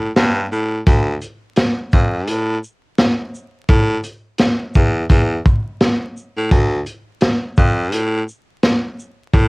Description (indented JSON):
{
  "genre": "hip hop, boom-bap hip-hop",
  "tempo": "85 BPM",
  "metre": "4/4",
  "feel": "swing 60% on 16ths",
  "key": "D minor",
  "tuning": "A4 = 440 Hz",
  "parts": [
    { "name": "raspy baritone saxophone", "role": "bass", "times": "0.0-9.5 s", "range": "D2 to A2", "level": "-18 LUFS", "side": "equal", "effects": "none" },
    { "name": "crunchy breakbeat drum kit", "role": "drums", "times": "0.2-9.5 s", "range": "hi-hat, kick drum, shaker, snare drum", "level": "-14 LUFS", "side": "equal", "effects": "cassette tape" }
  ],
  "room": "little or no reverb",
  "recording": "home recording on cassette, vinyl crackle",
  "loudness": "-15 LUFS",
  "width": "side -39 dB against mid",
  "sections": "0.9-9.5 A section",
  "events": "none",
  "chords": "none"
}